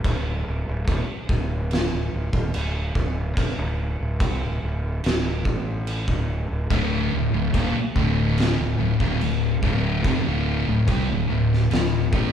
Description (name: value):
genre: stoner and doom metal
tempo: 72 BPM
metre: 4/4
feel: straight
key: D phrygian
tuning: A4 = 440 Hz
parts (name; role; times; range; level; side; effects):
- fuzz fingered electric bass; bass; 0.0-12.3 s; D1 to C2; -26 LUFS; equal; overdrive
- oversized low-tuned drum kit; drums; 0.0-12.3 s; crash cymbal, kick drum, snare drum; -26 LUFS; equal; none
- thick fuzz guitar; riff; 6.7-12.3 s; D2 to A3; -24 LUFS; left 8 dB; distortion
- thick fuzz guitar; riff; 6.7-12.3 s; D2 to A3; -25 LUFS; right 8 dB; distortion
room: light reverb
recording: band playing live in one room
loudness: -21 LUFS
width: side -8 dB against mid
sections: 0.0-12.3 A section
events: none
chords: 0.0 D5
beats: | 0.05 0.88 1.72 2.55 | 3.38 4.21 5.05 5.88 | 6.71 7.55 8.38 9.21 | 10.05 10.88 11.71